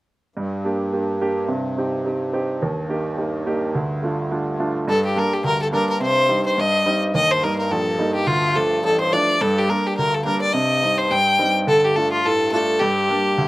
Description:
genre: celtic folk, Celtic reel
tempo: 212 BPM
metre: 4/4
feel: swing 56% on 8ths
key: G minor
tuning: A4 = 440 Hz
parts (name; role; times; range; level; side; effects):
- clear baby grand piano; accompaniment; 0.4-13.5 s; A1 to G4; -22 LUFS; right 2 dB; none
- musette accordion; drone; 0.4-13.5 s; G2; -29 LUFS; left 3 dB; none
- clear fiddle; melody; 4.9-13.5 s; F4 to G5; -18 LUFS; left 1 dB; slapback echo
room: little or no reverb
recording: recorded outdoors, with no room sound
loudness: -18 LUFS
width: side -18 dB against mid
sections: 0.4-4.9 A section; 4.9-13.5 B section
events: none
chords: 0.4 Gm; 1.5 Cm; 2.6 Eb; 3.7 Dm; 4.9 Gm; 6.0 Cm; 7.1 Eb; 8.3 Dm; 9.4 Gm; 10.5 Cm; 11.7 Dm; 12.8 Gm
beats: | 0.36 0.64 0.93 1.21 | 1.49 1.77 2.05 2.33 | 2.62 2.90 3.18 3.46 | 3.75 4.03 4.31 4.59 | 4.88 5.16 5.44 5.73 | 6.01 6.29 6.58 6.86 | 7.14 7.43 7.71 7.99 | 8.28 8.56 8.84 9.13 | 9.41 9.69 9.98 10.26 | 10.54 10.83 11.11 11.39 | 11.68 11.96 12.24 12.53 | 12.81 13.09 13.37

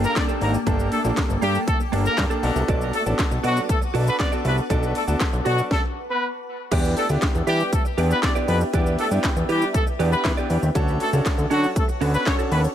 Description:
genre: dance-pop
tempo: 119 BPM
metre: 4/4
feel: straight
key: unclear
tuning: A4 = 440 Hz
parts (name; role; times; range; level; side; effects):
- clear horn section; melody; 0.0-12.6 s; F#3 to D5; -26 LUFS; left 1 dB; ping-pong delay
- bright grand piano; accompaniment; 0.0-12.7 s; Bb3 to B4; -28 LUFS; left 2 dB; none
- granular cloud pad; sustained chords; 0.0-12.7 s; Bb3 to D6; -33 LUFS; left 1 dB; built-in reverb, sidechain pumping
- direct-recorded clean electric guitar; riff; 0.0-12.7 s; Bb3 to D5; -29 LUFS; right 8 dB; analog chorus
- fat analog bass; bass; 0.0-12.7 s; G1 to E3; -22 LUFS; equal; sidechain pumping
- house drum kit; drums; 0.0-12.7 s; crash cymbal, handclaps, hi-hat, kick drum, shaker, snare drum; -24 LUFS; equal; overdrive
room: digital ambience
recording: none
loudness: -19 LUFS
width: side -10 dB against mid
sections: 0.0-6.7 A section; 6.7-12.7 A section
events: drop 0.0-6.7, 6.7-12.7; stop 5.7-6.7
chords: 0.0 Gmadd9; 2.4 Bm7; 6.7 Em7; 10.8 Dmaj7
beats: 0.16 | 0.67 1.17 1.68 2.18 | 2.69 3.19 3.69 4.20 | 4.70 5.21 5.71 6.21 | 6.72 7.22 7.73 8.23 | 8.73 9.24 9.74 10.25 | 10.75 11.26 11.76 12.27

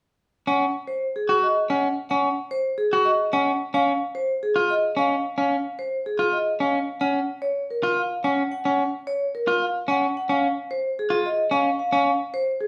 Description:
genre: classical, minimalist pattern music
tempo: 110 BPM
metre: 3/4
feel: straight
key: Db major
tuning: A4 = 445 Hz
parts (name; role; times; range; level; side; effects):
- vibraphone with medium hard mallets; melody; 0.5-12.7 s; Ab4 to Gb5; -27 LUFS; equal; none
- electric guitar at the edge of break-up; arpeggios; 0.5-12.1 s; Db4 to Gb4; -25 LUFS; equal; none
room: wet large studio reverb, RT60 0.9 s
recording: heard from further back in the room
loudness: -23 LUFS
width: mono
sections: 0.5-12.7 A section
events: none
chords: 0.5 Ab7sus4/Db (rootless); 3.7 Db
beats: | 0.47 1.02 1.56 | 2.11 2.65 3.20 | 3.74 4.29 4.83 | 5.38 5.92 6.47 | 7.02 7.56 8.11 | 8.65 9.20 9.74 | 10.29 10.83 11.38 | 11.93 12.47

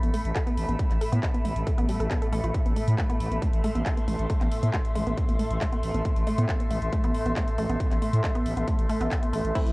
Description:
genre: driving peak-time techno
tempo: 137 BPM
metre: 4/4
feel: straight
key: A minor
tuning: A4 = 440 Hz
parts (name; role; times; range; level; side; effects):
- resonant blip pluck; riff; 0.0-9.6 s; G3 to A4; -32 LUFS; equal; chorus, overdrive, sidechain pumping, cassette tape, tape echo
- growling FM bass; bass; 0.0-9.7 s; A1 to A2; -27 LUFS; equal; sidechain pumping
- overtone-sweeping drone; drone; 0.0-9.7 s; A2 to A3; -36 LUFS; equal; chorus, built-in reverb, sidechain pumping, cassette tape
- techno drum kit; drums; 0.0-9.7 s; crash cymbal, handclaps, hi-hat; -37 LUFS; equal; cassette tape
- airy breathy pad; texture; 0.0-9.7 s; A4 to C6; -33 LUFS; equal; chorus, sidechain pumping, cassette tape
- electronic kick drum; drums; 0.4-9.6 s; none; -27 LUFS; equal; distortion, cassette tape
- filtered dub chord stab; stabs; 9.6-9.7 s; A3 to E4; -30 LUFS; right 1 dB; phaser, sidechain pumping, cassette tape
room: light reverb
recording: home recording on cassette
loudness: -23 LUFS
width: side -22 dB against mid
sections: 0.0-9.7 A section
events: none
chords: 0.0 Am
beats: 0.36 | 0.79 1.23 1.67 2.11 | 2.55 2.98 3.42 3.86 | 4.30 4.74 5.17 5.61 | 6.05 6.49 6.92 7.36 | 7.80 8.24 8.68 9.12 | 9.55

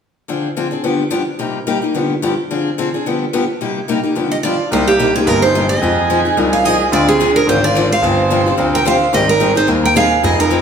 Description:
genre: acoustic string swing (jazz manouche)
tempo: 217 BPM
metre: 4/4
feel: swing 56% on 8ths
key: C minor from 4.7 s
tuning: A4 = 440 Hz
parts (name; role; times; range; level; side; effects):
- picked steel-string acoustic guitar; accompaniment; 0.3-10.6 s; G2 to Ab4; -17 LUFS; left 3 dB; none
- picked steel-string acoustic guitar; melody; 4.3-10.6 s; G4 to G5; -15 LUFS; right 2 dB; none
- warm violin; second line; 4.3-10.6 s; Bb3 to C5; -19 LUFS; right 4 dB; none
- bright concert grand piano; bass; 4.7-10.6 s; F1 to F2; -18 LUFS; equal; none
room: wet large studio reverb, RT60 1.3 s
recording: band playing live in one room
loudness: -13 LUFS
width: side -7 dB against mid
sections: 0.3-4.7 A section; 4.7-10.6 B section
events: none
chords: 0.3 Dm7b5; 0.8 G7; 1.4 Cm7; 1.9 G7; 2.5 Dm7b5; 3.1 G7; 3.6 Cm7; 4.2 G7; 4.7 Cm7; 5.8 Fm7; 6.9 Dm7b5; 8.0 G7sus4; 9.1 Abmaj7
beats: | 0.29 0.56 0.84 1.12 | 1.40 1.67 1.95 2.22 | 2.50 2.78 3.05 3.33 | 3.61 3.88 4.16 4.44 | 4.71 4.99 5.26 5.54 | 5.82 6.09 6.37 6.64 | 6.92 7.20 7.47 7.75 | 8.03 8.30 8.58 8.85 | 9.13 9.40 9.68 9.96 | 10.23 10.51

